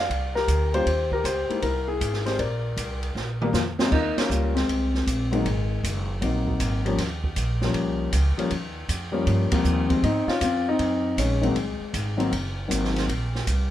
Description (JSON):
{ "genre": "jazz piano trio", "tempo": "157 BPM", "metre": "4/4", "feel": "swing 67% on 8ths", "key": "Eb mixolydian", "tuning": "A4 = 440 Hz", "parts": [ { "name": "warm grand piano", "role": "melody", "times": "0.0-13.1 s", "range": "Eb2 to F5", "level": "-25 LUFS", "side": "left 3 dB", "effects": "none" }, { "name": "upright bass", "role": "bass", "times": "0.0-13.7 s", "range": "Gb1 to Ab2", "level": "-26 LUFS", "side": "right 1 dB", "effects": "none" }, { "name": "open jazz drum kit", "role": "drums", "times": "0.1-13.6 s", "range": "crash cymbal, hi-hat, kick drum, ride cymbal, snare drum, toms", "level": "-30 LUFS", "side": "right 2 dB", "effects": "none" } ], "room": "light reverb", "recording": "none", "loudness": "-22 LUFS", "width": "side -12 dB against mid", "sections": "0.0-3.9 A section; 3.9-13.7 A section", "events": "drum fill 3.2-3.9; band accent 4.1, 9.5", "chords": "0.0 Bb; 0.9 Eb7; 1.6 C; 2.4 Bb; 3.9 Eb7(no3); 5.4 Ab7; 7.0 Eb7; 10.0 Ab7; 13.1 N.C." }